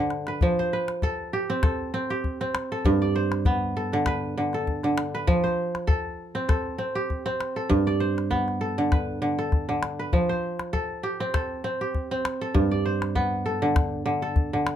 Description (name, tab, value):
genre	west african traditional, West African string and xylophone music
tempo	99 BPM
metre	4/4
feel	swing 55% on 16ths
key	F lydian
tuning	A4 = 440 Hz
part	kora	arpeggios	0.0-14.8 s	G2 to D5	-24 LUFS	right 1 dB	none
part	calabash	percussion	0.1-14.8 s	none	-26 LUFS	left 2 dB	none
room	moderate small room reverb, RT60 0.5 s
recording	close, detailed microphones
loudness	-23 LUFS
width	side -10 dB against mid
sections	0.4-14.8 A section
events	drum fill 0.0-0.4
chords	0.4 F; 2.8 G; 5.3 F; 7.7 G; 10.1 F; 12.6 G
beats	| 0.41 1.02 1.63 2.24 | 2.85 3.45 4.06 4.67 | 5.28 5.88 6.49 7.09 | 7.70 8.31 8.91 9.52 | 10.13 10.73 11.34 11.94 | 12.55 13.15 13.76 14.37